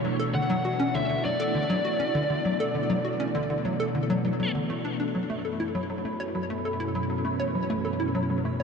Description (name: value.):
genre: ambient.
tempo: 100 BPM.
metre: 4/4.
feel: straight.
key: unclear.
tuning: A4 = 440 Hz.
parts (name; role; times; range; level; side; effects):
phased string machine; sustained chords; 0.0-8.6 s; F#2 to D4; -29 LUFS; right 1 dB; ensemble chorus, phaser, shimmer reverb.
hollow square pluck; riff; 0.0-8.6 s; D3 to C#5; -29 LUFS; left 1 dB; lush chorus, vintage 12-bit sampler grit, shimmer reverb, ping-pong delay.
biting lead guitar; melody; 0.3-4.5 s; D5 to F#5; -31 LUFS; left 1 dB; overdrive, shimmer reverb, ping-pong delay.
pulsing gated texture; texture; 5.5-8.6 s; B5; -37 LUFS; equal; chorus, built-in reverb, shimmer reverb.
room: wet huge ambient reverb, RT60 8.5 s.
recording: dark, warm production.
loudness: -25 LUFS.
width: side -5 dB against mid.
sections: 0.0-5.1 A section; 5.1-8.6 B section.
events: none.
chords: 0.0 D6; 5.1 F#m.